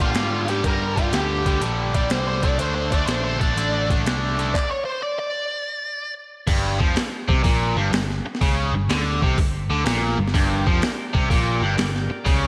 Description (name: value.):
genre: blues rock power trio and southern rock.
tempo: 124 BPM.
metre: 4/4.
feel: swing 68% on 8ths.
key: G minor from 6.5 s.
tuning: A4 = 438 Hz.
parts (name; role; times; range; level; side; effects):
bluesy overdriven lead guitar; melody; 0.0-6.1 s; F4 to D5; -28 LUFS; equal; wah, distortion, slapback echo, tape echo.
biting overdriven guitar; riff; 0.0-12.5 s; G2 to D4; -26 LUFS; equal; slapback echo.
picked electric bass; bass; 0.0-12.5 s; G1 to Bb2; -28 LUFS; equal; none.
boom bap sampler-style drum kit; drums; 0.0-12.4 s; crash cymbal, handclaps, hi-hat, kick drum, snare drum; -25 LUFS; equal; none.
overdriven tonewheel organ; sustained chords; 10.3-12.5 s; G4 to G5; -34 LUFS; equal; slow rotary speaker.
room: moderate scoring stage reverb, RT60 2.0 s.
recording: big arena sound.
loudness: -22 LUFS.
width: mono.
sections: 0.0-6.5 A section; 6.5-12.5 B section.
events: stop 4.5-6.5.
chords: 0.0 Gm; 2.3 D5; 6.5 Gm.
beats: 0.15 | 0.64 1.12 1.61 2.10 | 2.59 3.08 3.56 4.05 | 4.54 5.02 5.51 5.99 | 6.48 6.96 7.44 7.93 | 8.41 8.89 9.37 9.86 | 10.34 10.82 11.30 11.79 | 12.27.